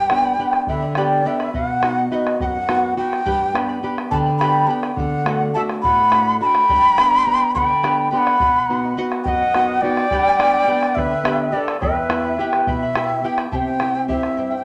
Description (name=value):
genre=andean folk, Andean ensemble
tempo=70 BPM (dotted quarters)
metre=6/8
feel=straight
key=unclear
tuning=A4 = 439 Hz
part: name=breathy large quena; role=melody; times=0.0-14.6 s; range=D5 to C6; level=-21 LUFS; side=equal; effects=none
part: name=charango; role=accompaniment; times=0.0-14.6 s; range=E4 to B5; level=-28 LUFS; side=equal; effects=none
part: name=nylon-string guitar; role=accompaniment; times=0.0-14.6 s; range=E2 to G4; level=-26 LUFS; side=equal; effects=none
part: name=bombo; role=percussion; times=0.1-14.5 s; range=none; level=-29 LUFS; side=equal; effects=none
part: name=bright reedy quena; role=second line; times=5.6-12.9 s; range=A4 to A5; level=-26 LUFS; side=equal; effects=none
room=wet club reverb, RT60 0.7 s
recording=none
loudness=-18 LUFS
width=mono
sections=0.0-13.5 A section; 13.5-14.6 B section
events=none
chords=0.0 G; 1.5 B; 3.3 G; 5.0 D; 6.7 G; 8.4 B; 10.1 G; 11.8 Em; 13.5 C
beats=0.67 | 1.53 2.40 | 3.26 4.12 | 4.98 5.84 | 6.70 7.55 | 8.41 9.26 | 10.11 10.97 | 11.82 12.67 | 13.52 14.37